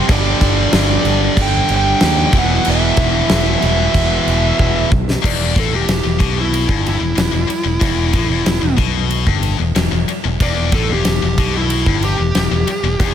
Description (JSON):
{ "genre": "hard rock", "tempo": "93 BPM", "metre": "4/4", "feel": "straight", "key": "E minor", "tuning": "A4 = 440 Hz", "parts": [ { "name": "distorted electric guitar", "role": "riff", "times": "0.0-4.9 s", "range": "E2 to G3", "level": "-20 LUFS", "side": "right 13 dB", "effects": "overdrive" }, { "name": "heavy high-gain guitar", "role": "riff", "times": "0.0-13.1 s", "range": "E2 to G3", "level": "-20 LUFS", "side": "left 13 dB", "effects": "distortion" }, { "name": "smooth overdriven lead guitar", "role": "melody", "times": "0.1-13.1 s", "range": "E4 to G5", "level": "-20 LUFS", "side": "right 1 dB", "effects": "tape echo" }, { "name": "growling fingered electric bass", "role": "bass", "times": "0.1-13.1 s", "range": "E1 to D#2", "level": "-18 LUFS", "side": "equal", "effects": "overdrive" }, { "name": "huge arena drum kit", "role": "drums", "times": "0.1-13.1 s", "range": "crash cymbal, kick drum, ride cymbal, snare drum", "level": "-18 LUFS", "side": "equal", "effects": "none" } ], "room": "light reverb", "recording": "none", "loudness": "-13 LUFS", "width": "side -9 dB against mid", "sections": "0.0-5.2 A section; 5.2-13.1 B section", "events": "drum fill 4.6-5.2; lead electric guitar solo 5.2-13.1", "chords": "0.1 G5; 2.3 E5; 5.2 Em" }